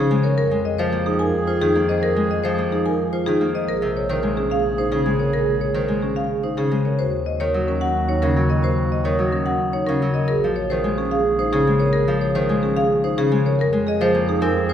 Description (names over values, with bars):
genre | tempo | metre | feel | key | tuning
classical, minimalist pattern music | 109 BPM | 3/4 | straight | Bb minor | A4 = 440 Hz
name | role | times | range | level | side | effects
marimba with hard mallets | melody | 0.0-14.7 s | Ab4 to Ab5 | -23 LUFS | left 6 dB | none
warm clarinet | second line | 0.0-14.7 s | Gb4 to Ab4 | -28 LUFS | right 5 dB | none
Celtic harp | accompaniment | 0.0-14.7 s | C3 to C4 | -22 LUFS | equal | none
vibraphone with soft mallets | arpeggios | 0.0-14.7 s | Db4 to C5 | -25 LUFS | right 4 dB | none
warm double bass | bass | 0.0-14.7 s | Bb1 to F2 | -28 LUFS | right 2 dB | none
room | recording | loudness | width
wet scoring stage reverb, RT60 1.6 s | recorded in a church or concert hall | -18 LUFS | side -9 dB against mid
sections
0.0-14.7 A section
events
none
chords
0.4 Fm7; 3.7 Bbm9; 7.0 Ebm7; 10.3 Bbm9; 13.6 Fm7